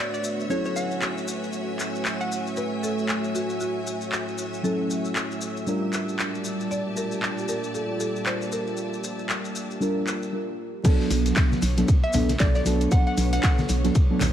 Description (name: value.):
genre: deep house.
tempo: 116 BPM.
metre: 4/4.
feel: swing 59% on 16ths.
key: B minor.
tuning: A4 = 435 Hz.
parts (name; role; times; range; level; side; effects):
hollow square pluck; melody; 0.0-2.6, 12.0-13.5 s; C#5 to F#5; -31 LUFS; equal; chorus, tape echo.
deep dark ambient pad; sustained chords; 0.0-14.3 s; A3 to E5; -33 LUFS; right 2 dB; chorus, built-in reverb, sidechain pumping.
mellow FM electric piano; stabs; 0.0-14.2 s; F#3 to B4; -28 LUFS; equal; chorus, phaser, low-pass filter, digital delay.
rich studio string section; texture; 0.0-14.3 s; B3 to A5; -35 LUFS; equal; sidechain pumping.
string machine, violins; texture; 0.0-10.3 s; E5 to E6; -40 LUFS; equal; ensemble chorus, sidechain pumping.
maracas; percussion; 0.1-14.3 s; none; -38 LUFS; left 4 dB; none.
house drum kit; drums; 1.0-14.3 s; crash cymbal, handclaps, hi-hat; -30 LUFS; equal; none.
buzzing marimba with hard mallets; melody; 2.6-10.6 s; F#4 to D5; -33 LUFS; equal; ping-pong delay.
crunchy breakbeat drum kit; drums; 10.8-14.3 s; ride cymbal, snare drum; -41 LUFS; equal; none.
electronic kick drum; drums; 10.8-14.1 s; none; -20 LUFS; equal; none.
organ-like FM bass; bass; 11.1-14.3 s; B1; -24 LUFS; equal; sidechain pumping.
congas; percussion; 11.5-14.3 s; none; -30 LUFS; left 1 dB; none.
room: light reverb, studio reverb.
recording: vinyl crackle.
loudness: -23 LUFS.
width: side -10 dB against mid.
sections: 0.0-10.8 A section; 10.8-14.3 B section.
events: filter sweep on FM electric piano 0.0-10.8; break 10.3-10.8; drop 10.8-14.3.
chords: 0.0 Bm7; 0.5 F#m7; 5.7 Gm7; 10.8 Bm7.